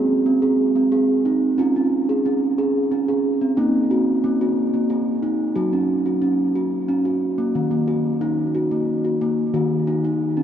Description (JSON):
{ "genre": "world meditative, meditative tuned percussion", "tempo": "90 BPM", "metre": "3/4", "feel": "straight", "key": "Eb dorian", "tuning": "A4 = 440 Hz", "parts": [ { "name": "steel tongue drum", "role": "solo", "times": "0.0-10.4 s", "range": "Eb3 to Ab4", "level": "-18 LUFS", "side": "right 1 dB", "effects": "tape echo" } ], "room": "wet cathedral reverb, RT60 5.9 s", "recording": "in a vast, echoing space, cassette tape", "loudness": "-18 LUFS", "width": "side -9 dB against mid", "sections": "0.0-7.5 A section; 7.5-10.4 B section", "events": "none", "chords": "0.0 Ab; 1.6 Db5; 3.6 Ebm; 5.6 Gb5; 7.5 Ebm" }